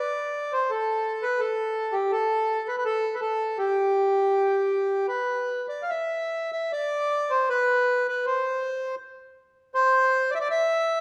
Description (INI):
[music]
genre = celtic folk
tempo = 73-86 BPM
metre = 3/4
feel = rubato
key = A minor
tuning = A4 = 441 Hz
[part]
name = accordion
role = solo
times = 0.0-11.0 s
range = G4 to F5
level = -25 LUFS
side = equal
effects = none
[sound]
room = moderate recital hall reverb, RT60 1.6 s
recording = recorded in a church or concert hall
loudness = -25 LUFS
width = mono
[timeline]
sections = 0.0-5.9 A section; 5.9-11.0 B section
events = none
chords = none